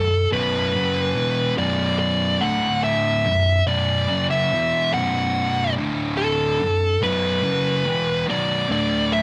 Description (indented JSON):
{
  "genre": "metal",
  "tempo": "72 BPM",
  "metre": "4/4",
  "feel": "straight",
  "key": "B minor",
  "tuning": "A4 = 439 Hz",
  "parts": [
    { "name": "fuzz lead guitar", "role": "melody", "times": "0.0-9.2 s", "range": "A4 to F#5", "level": "-24 LUFS", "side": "equal", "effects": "distortion" },
    { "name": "fuzz guitar", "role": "riff", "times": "0.0-9.2 s", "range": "B1 to F#3", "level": "-24 LUFS", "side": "equal", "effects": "distortion" }
  ],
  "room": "moderate stone room reverb, RT60 1.1 s",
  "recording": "band playing live in one room",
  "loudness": "-21 LUFS",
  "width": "mono",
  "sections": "0.0-9.2 A section",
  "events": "none",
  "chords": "0.0 B5; 2.4 D5; 3.3 B5; 5.8 D5; 6.6 B5; 8.7 D5",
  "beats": "| 0.32 1.16 2.00 2.83 | 3.67 4.51 5.35 6.19 | 7.03 7.86 8.70"
}